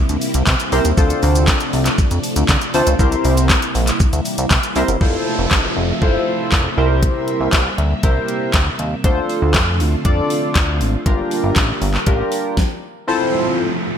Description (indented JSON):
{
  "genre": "dance-pop",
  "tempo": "119 BPM",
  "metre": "4/4",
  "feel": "straight",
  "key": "F major",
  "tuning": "A4 = 438 Hz",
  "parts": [
    { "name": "string machine, full ensemble", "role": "sustained chords", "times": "0.0-14.0 s", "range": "C3 to E5", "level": "-24 LUFS", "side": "equal", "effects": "ensemble chorus, sidechain pumping" },
    { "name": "chorused synth bass", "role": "bass", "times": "0.1-12.2 s", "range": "F1 to D3", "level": "-18 LUFS", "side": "equal", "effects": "sidechain pumping" },
    { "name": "smooth R&B drum kit", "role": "drums", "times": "0.1-12.7 s", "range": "handclaps, hi-hat, kick drum, shaker, snare drum", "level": "-17 LUFS", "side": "equal", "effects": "gated reverb" },
    { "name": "chorused polysynth", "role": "accompaniment", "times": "0.7-13.6 s", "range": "C4 to D5", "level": "-20 LUFS", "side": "equal", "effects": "sidechain pumping" },
    { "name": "downlifter", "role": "sound effects", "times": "5.0-9.0, 13.1-14.0 s", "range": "none", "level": "-27 LUFS", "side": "right 1 dB", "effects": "none" }
  ],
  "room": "light reverb",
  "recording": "bright 1980s-style digital production",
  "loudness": "-14 LUFS",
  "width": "side -8 dB against mid",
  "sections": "0.0-5.0 A section; 5.0-13.1 B section",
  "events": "stop 12.6-13.1",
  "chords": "0.0 C7; 1.0 Dm7; 3.0 C7; 5.0 Fmaj7; 6.8 C7; 9.0 Dm7; 11.1 Gm7; 13.1 Fmaj7",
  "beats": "0.47 | 0.98 1.48 1.99 2.49 | 2.99 3.50 4.00 4.51 | 5.01 5.51 6.02 6.52 | 7.03 7.53 8.04 8.54 | 9.04 9.55 10.05 10.56 | 11.06 11.56 12.07 12.57 | 13.08 13.58"
}